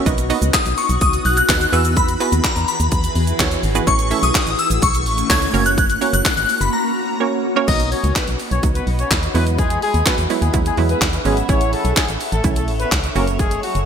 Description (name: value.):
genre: dance-pop.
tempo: 126 BPM.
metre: 4/4.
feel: straight.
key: B major.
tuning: A4 = 440 Hz.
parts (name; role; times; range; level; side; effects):
hollow square pluck; accompaniment; 0.0-13.7 s; E3 to E5; -23 LUFS; right 8 dB; chorus, sidechain pumping.
granular cloud pad; sustained chords; 0.0-13.9 s; E3 to C#6; -25 LUFS; left 1 dB; built-in reverb, sidechain pumping.
organ-like FM bass; bass; 0.1-13.8 s; F#1 to E2; -20 LUFS; equal; sidechain pumping.
house drum kit; drums; 0.1-13.9 s; crash cymbal, handclaps, hi-hat, kick drum, shaker, snare drum; -20 LUFS; equal; gated reverb.
tube shaker; percussion; 0.1-13.9 s; none; -36 LUFS; right 17 dB; none.
shimmering bell with halo; melody; 0.5-7.2 s; A#5 to G#6; -19 LUFS; left 3 dB; ensemble chorus, phaser, digital delay.
warm horn section; melody; 7.7-13.9 s; F#3 to D#5; -23 LUFS; left 3 dB; sidechain pumping, digital delay.
room: light reverb.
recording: bright 1980s-style digital production.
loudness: -15 LUFS.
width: side -7 dB against mid.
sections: 0.0-7.7 A section; 7.7-13.9 B section.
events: break 6.7-7.7.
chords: 0.1 B; 1.7 Eadd9; 3.9 A; 5.5 F#; 7.7 B; 9.3 Eadd9; 11.5 A; 13.2 F#.